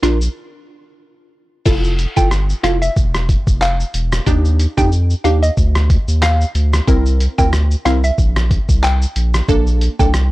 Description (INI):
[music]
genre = dancehall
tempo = 92 BPM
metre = 4/4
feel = swing 56% on 16ths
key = F major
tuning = A4 = 440 Hz
[part]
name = wavetable chord stab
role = accompaniment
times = 0.0-10.1 s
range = Bb3 to Bb4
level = -19 LUFS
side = equal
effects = none
[part]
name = saturated sub bass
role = bass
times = 0.0-10.3 s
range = E1 to F2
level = -15 LUFS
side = equal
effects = none
[part]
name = lo-fi sampler-style drum kit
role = drums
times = 0.0-10.3 s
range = crash cymbal, handclaps, hi-hat, kick drum, rim click, shaker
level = -17 LUFS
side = equal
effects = none
[part]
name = hollow square pluck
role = melody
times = 2.2-10.1 s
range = Eb5 to G5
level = -21 LUFS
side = equal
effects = chorus
[sound]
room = little or no reverb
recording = dry, gritty hardware recording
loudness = -13 LUFS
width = side -18 dB against mid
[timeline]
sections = 0.0-1.7 A section; 1.7-10.3 B section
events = break 0.4-1.7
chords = 0.0 Bb; 1.7 Fmaj7; 4.3 Ebmaj7; 6.9 C7; 9.5 Bbmaj7